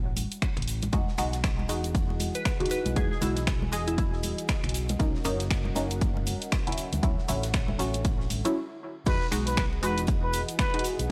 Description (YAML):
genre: deep house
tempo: 118 BPM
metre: 4/4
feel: swing 59% on 16ths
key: E major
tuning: A4 = 440 Hz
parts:
  - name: filtered dub chord stab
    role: stabs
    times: 0.0-11.1 s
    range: F#3 to D#5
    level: -35 LUFS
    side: equal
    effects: phaser, sidechain pumping, tape echo
  - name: overdriven fingered electric bass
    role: bass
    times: 0.0-11.1 s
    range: E1 to E2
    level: -34 LUFS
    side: equal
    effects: sidechain pumping
  - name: punchy analog drum machine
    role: drums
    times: 0.2-11.1 s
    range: crash cymbal, finger snaps, hi-hat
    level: -37 LUFS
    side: equal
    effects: none
  - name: congas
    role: percussion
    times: 0.2-8.4 s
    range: none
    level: -41 LUFS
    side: equal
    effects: none
  - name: egg shaker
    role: percussion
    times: 0.2-11.1 s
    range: none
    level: -45 LUFS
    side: equal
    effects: none
  - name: electronic kick drum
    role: drums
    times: 0.4-10.7 s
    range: none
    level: -31 LUFS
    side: equal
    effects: overdrive
  - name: dark analog pad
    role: sustained chords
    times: 1.4-11.1 s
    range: D3 to G#5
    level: -41 LUFS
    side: equal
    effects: chorus, sidechain pumping
  - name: huge arena drum kit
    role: drums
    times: 0.9-11.0 s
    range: ride cymbal, snare drum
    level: -49 LUFS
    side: equal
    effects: none
  - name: glassy wavetable pluck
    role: melody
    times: 2.4-4.4 s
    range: E4 to B4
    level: -37 LUFS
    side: equal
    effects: chorus, cassette tape, analog delay
  - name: trumpet with plunger mute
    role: melody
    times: 9.1-10.8 s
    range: B4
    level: -34 LUFS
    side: equal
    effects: tape echo
room: studio ambience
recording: dry, gritty hardware recording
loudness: -28 LUFS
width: mono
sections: 0.0-9.1 A section; 9.1-11.1 B section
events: break 8.6-9.1; drop 9.1-11.1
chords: 0.0 Dmaj7 (rootless); 0.9 Emaj9; 4.7 Bmaj9; 6.8 Dmaj9; 9.1 Emaj9